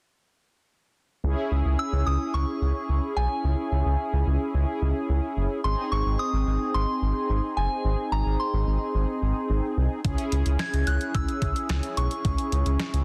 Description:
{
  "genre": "synth-pop",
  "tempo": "109 BPM",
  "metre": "4/4",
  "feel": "straight",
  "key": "unclear",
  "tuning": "A4 = 440 Hz",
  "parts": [
    { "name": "mellow synth brass", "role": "accompaniment", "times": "1.2-13.0 s", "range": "B#3 to G#4", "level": "-32 LUFS", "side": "equal", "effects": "chorus" },
    { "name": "round analog bass", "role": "bass", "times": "1.2-13.0 s", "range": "F#1 to C#2", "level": "-27 LUFS", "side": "equal", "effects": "none" },
    { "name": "soft synth bell", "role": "melody", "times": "1.8-13.0 s", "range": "G#5 to G#6", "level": "-33 LUFS", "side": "equal", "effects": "chorus, tape echo" },
    { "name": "detuned 8-bit digital drum machine", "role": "drums", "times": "10.0-13.0 s", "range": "hi-hat, kick drum, snare drum", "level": "-32 LUFS", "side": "equal", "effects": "none" }
  ],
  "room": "light reverb",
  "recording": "dense, heavily limited modern master",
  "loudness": "-26 LUFS",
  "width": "mono",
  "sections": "1.2-13.0 A section",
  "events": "none",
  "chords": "1.2 C#m; 5.6 G#; 10.0 C#m"
}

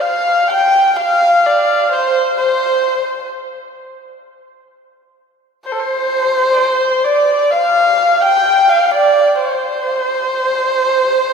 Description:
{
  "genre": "chinese traditional, Chinese chamber ensemble",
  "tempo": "64 BPM",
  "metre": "4/4",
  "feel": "rubato",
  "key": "unclear",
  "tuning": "A4 = 438 Hz",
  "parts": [
    { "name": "dark erhu", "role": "melody", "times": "0.0-11.3 s", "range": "C5 to G5", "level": "-13 LUFS", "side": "equal", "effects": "none" },
    { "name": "rich erhu", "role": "second line", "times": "0.0-11.3 s", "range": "A4 to G5", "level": "-18 LUFS", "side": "left 1 dB", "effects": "none" }
  ],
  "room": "wet church reverb, RT60 3.5 s",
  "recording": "recorded in a church or concert hall",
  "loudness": "-12 LUFS",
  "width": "side -6 dB against mid",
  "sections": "0.0-11.3 A section",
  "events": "none",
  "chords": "none"
}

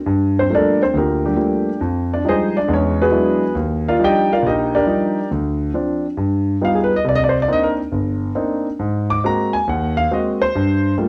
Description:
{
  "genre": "solo jazz",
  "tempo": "138 BPM",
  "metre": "4/4",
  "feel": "swing 67% on 8ths",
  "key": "G minor",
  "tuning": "A4 = 441 Hz",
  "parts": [
    { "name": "warm concert grand piano", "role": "solo", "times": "0.1-11.1 s", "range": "G1 to D6", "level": "-18 LUFS", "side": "equal", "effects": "none" }
  ],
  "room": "moderate studio reverb, RT60 0.9 s",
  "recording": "worn, warbling old tape, cassette tape, warbly pitch drift",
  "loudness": "-18 LUFS",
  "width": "mono",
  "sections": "0.1-11.1 A section",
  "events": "grand piano solo 0.1-11.1",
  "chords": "0.1 Gm9; 1.8 Fm9; 2.7 E9; 3.6 Ebmaj9; 5.3 Dm7; 6.2 Gaug7; 7.0 Cm9; 8.8 Ab9; 10.5 Gm9"
}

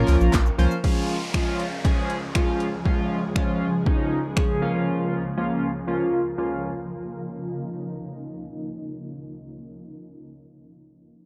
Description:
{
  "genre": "dance-pop",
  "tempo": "119 BPM",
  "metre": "4/4",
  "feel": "straight",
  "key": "Bb minor",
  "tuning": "A4 = 440 Hz",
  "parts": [
    { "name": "chorused polysynth", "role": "accompaniment", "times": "0.0-6.7 s", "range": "Db2 to C5", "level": "-27 LUFS", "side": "equal", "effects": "sidechain pumping, low-pass filter" },
    { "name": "granular cloud pad", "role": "sustained chords", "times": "0.1-8.9 s", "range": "Db2 to Db6", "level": "-34 LUFS", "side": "equal", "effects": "built-in reverb, sidechain pumping, low-pass filter" },
    { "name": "warm sub bass", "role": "bass", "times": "0.0-0.7 s", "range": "Bb1 to Db2", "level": "-21 LUFS", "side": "equal", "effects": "sidechain pumping" },
    { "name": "punchy analog drum machine", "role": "drums", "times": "0.1-4.5 s", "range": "finger snaps, handclaps, hi-hat, kick drum, shaker, snare drum", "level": "-25 LUFS", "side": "equal", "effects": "none" },
    { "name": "downlifter", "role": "sound effects", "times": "0.8-4.9 s", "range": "none", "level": "-38 LUFS", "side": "equal", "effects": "none" }
  ],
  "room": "digital ambience",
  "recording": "dry, close 1970s-style studio recording",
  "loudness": "-25 LUFS",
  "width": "mono",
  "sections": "0.8-8.9 A section",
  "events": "filter sweep 0.8-8.9",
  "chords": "0.0 Bbm; 0.8 Db; 4.6 Bbm/Db"
}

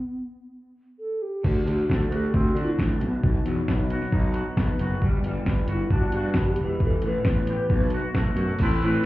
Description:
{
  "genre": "indie rock",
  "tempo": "134 BPM",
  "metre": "4/4",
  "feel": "straight",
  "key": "unclear",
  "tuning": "A4 = 443 Hz",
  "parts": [
    { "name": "bright bass ocarina", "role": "melody", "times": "0.0-9.1 s", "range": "B3 to B4", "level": "-29 LUFS", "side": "left 1 dB", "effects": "plate reverb, tape echo" },
    { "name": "twangy electric guitar", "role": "riff", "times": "1.4-9.1 s", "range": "A2 to B4", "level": "-29 LUFS", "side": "equal", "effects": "double-tracked left and right" },
    { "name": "fuzz picked electric bass", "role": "bass", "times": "1.4-8.9 s", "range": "E1 to D3", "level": "-26 LUFS", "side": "equal", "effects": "overdrive" },
    { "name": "detuned 8-bit digital drum machine", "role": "drums", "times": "1.4-8.9 s", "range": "crash cymbal, hi-hat, kick drum, snare drum", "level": "-24 LUFS", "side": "equal", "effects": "none" }
  ],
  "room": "light reverb",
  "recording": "heard muffled through a wall, club reverb, EQ",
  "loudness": "-22 LUFS",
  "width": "side -17 dB against mid",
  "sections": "0.0-1.5 A section; 1.5-8.6 B section",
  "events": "stop 0.0-1.5",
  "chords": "0.0 N.C.; 1.5 D7; 3.0 B; 5.0 Gmaj7; 6.6 Em; 7.7 B5"
}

